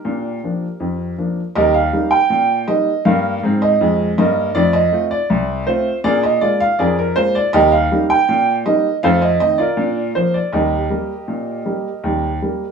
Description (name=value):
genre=ragtime piano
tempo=80 BPM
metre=2/4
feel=straight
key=Eb major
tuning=A4 = 441 Hz
part: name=clear upright piano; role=solo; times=0.0-12.7 s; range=C2 to G5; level=-14 LUFS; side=right 1 dB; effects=none
room=wet studio reverb, RT60 0.5 s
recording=heard from further back in the room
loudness=-14 LUFS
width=side -6 dB against mid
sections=0.0-12.7 A section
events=none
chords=0.1 Bb; 1.6 Eb; 3.1 Fm11; 4.6 F; 6.0 Bb7; 7.5 Eb; 9.0 F7; 9.8 Bb; 10.5 Eb